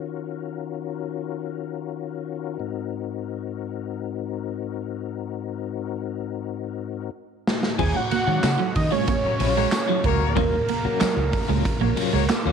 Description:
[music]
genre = funk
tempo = 93 BPM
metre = 4/4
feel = straight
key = Eb dorian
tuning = A4 = 440 Hz
[part]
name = tonewheel organ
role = sustained chords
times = 0.0-7.1 s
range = Ab2 to Bb4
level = -29 LUFS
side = left 10 dB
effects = overdrive, chorus vibrato, slow rotary speaker
[part]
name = raw garage drum kit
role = drums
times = 7.5-12.4 s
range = crash cymbal, handclaps, hi-hat, kick drum, ride cymbal, snare drum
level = -24 LUFS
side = right 1 dB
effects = none
[part]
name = fat analog lead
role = melody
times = 7.8-12.5 s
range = Bb4 to Ab5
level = -25 LUFS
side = right 3 dB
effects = chorus
[part]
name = clean electric guitar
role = accompaniment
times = 7.8-12.5 s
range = Gb3 to Gb4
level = -29 LUFS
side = left 14 dB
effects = tremolo
[part]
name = vintage muted fingered electric bass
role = bass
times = 7.8-12.5 s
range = Bb1 to Eb3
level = -25 LUFS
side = right 1 dB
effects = none
[part]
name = electric guitar at the edge of break-up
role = riff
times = 8.0-12.4 s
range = Gb3 to Bb3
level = -28 LUFS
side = right 14 dB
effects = analog chorus
[part]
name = tambourine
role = percussion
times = 8.4-12.5 s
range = none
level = -40 LUFS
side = left 15 dB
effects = none
[part]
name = warm horn section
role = second line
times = 9.3-12.2 s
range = Bb3 to Db5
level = -30 LUFS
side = left 13 dB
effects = none
[sound]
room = light reverb, studio reverb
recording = 1960s-style stereo with parts hard left and right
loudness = -23 LUFS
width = side -6 dB against mid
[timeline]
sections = 0.0-7.8 A section; 7.8-12.5 B section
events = drum fill 6.5-7.8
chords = 0.0 Ebm9; 2.6 Ab9; 7.8 Ebm9

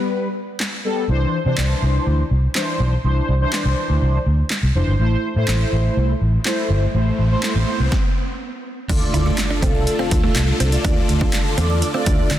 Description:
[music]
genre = dance-pop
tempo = 123 BPM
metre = 4/4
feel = straight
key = unclear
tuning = A4 = 441 Hz
[part]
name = mellow synth brass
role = accompaniment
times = 0.0-12.4 s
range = E3 to D5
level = -23 LUFS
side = left 1 dB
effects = chorus, phaser, sidechain pumping
[part]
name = punchy analog drum machine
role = drums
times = 0.6-12.4 s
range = crash cymbal, handclaps, hi-hat, kick drum, snare drum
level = -22 LUFS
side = equal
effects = overdrive
[part]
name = vintage muted fingered electric bass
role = bass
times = 1.1-12.4 s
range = F1 to D3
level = -18 LUFS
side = equal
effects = sidechain pumping
[part]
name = riser and impact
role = sound effects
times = 6.3-10.8 s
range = none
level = -30 LUFS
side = equal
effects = none
[part]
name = supersaw chords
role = sustained chords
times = 8.9-12.4 s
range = D3 to A4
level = -27 LUFS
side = right 1 dB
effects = phaser, sidechain pumping
[part]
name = buzzing kalimba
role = arpeggios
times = 8.9-12.4 s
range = A3 to F5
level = -29 LUFS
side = left 2 dB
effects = sidechain pumping, dub echo
[part]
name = direct-recorded clean electric guitar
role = riff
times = 8.9-12.4 s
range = A3 to E4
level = -28 LUFS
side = right 5 dB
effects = analog chorus
[sound]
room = light reverb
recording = dense, heavily limited modern master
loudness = -16 LUFS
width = side -12 dB against mid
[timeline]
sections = 0.0-8.9 A section; 8.9-12.4 B section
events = riser 6.3-8.9; stop 7.9-8.9; impact 8.9-10.8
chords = 0.0 Gadd9; 1.1 Cadd9; 5.0 Am; 8.9 Dm

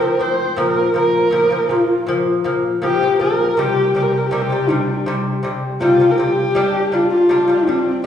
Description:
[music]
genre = mongolian traditional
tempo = 80 BPM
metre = 4/4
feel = straight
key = Bb gong mode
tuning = A4 = 440 Hz
[part]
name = dark horsehead fiddle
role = melody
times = 0.0-8.1 s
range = C4 to C5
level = -16 LUFS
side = left 1 dB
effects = none
[part]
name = lute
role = arpeggios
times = 0.0-8.1 s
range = Bb2 to D4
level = -19 LUFS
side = left 1 dB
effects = none
[sound]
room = wet recital hall reverb, RT60 1.7 s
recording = recorded in a church or concert hall, small room ambience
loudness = -14 LUFS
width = side -9 dB against mid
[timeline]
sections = 0.0-8.1 A section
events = none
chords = 0.0 F5; 0.6 Bb5; 3.6 C5; 6.6 G5

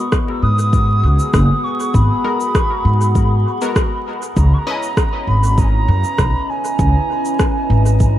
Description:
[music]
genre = ambient dub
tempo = 99 BPM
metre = 4/4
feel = straight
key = G# minor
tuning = A4 = 440 Hz
[part]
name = mellow wooden flute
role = melody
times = 0.0-8.2 s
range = G#5 to D#6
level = -21 LUFS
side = right 2 dB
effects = vintage 12-bit sampler grit, dub echo
[part]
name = deep dark ambient pad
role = sustained chords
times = 0.0-8.2 s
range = B3 to F#5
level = -24 LUFS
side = left 1 dB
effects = chorus, built-in reverb
[part]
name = filtered dub chord stab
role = stabs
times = 0.0-4.9 s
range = G#3 to D#5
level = -28 LUFS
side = left 4 dB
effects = chorus, dub echo
[part]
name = electronic kick drum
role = drums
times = 0.1-8.1 s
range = none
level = -17 LUFS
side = equal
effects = none
[part]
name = electronic rim click and shaker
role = drums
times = 0.1-8.1 s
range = none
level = -25 LUFS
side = equal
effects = dub echo
[part]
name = upright bass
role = bass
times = 0.4-8.2 s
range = F#1 to G#2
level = -14 LUFS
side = equal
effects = none
[sound]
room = digital ambience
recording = dark, warm production, vinyl crackle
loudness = -13 LUFS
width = side -12 dB against mid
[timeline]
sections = 0.0-8.2 A section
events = none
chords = 0.0 G#m9; 4.4 C#m9

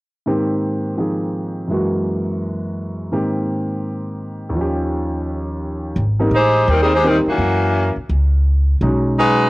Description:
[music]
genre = jazz, big band swing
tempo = 168 BPM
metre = 4/4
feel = swing 63% on 8ths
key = Ab major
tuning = A4 = 443 Hz
[part]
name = warm grand piano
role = accompaniment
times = 0.3-9.5 s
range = Eb2 to Ab4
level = -20 LUFS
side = equal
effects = cassette tape
[part]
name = upright bass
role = bass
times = 6.0-9.5 s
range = Ab1 to Gb2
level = -17 LUFS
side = equal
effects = none
[part]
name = warm saxophone section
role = melody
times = 6.3-9.5 s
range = Eb3 to C5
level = -14 LUFS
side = equal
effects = cassette tape
[sound]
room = moderate booth ambience, RT60 0.2 s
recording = home recording on cassette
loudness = -16 LUFS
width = side -20 dB against mid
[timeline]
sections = 0.3-6.0 A section; 6.0-9.5 B section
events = none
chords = 0.3 Abmaj7; 1.7 Gb7; 3.1 Abmaj7; 4.5 Eb9; 6.0 Abmaj7; 7.4 Gb7; 8.8 B69

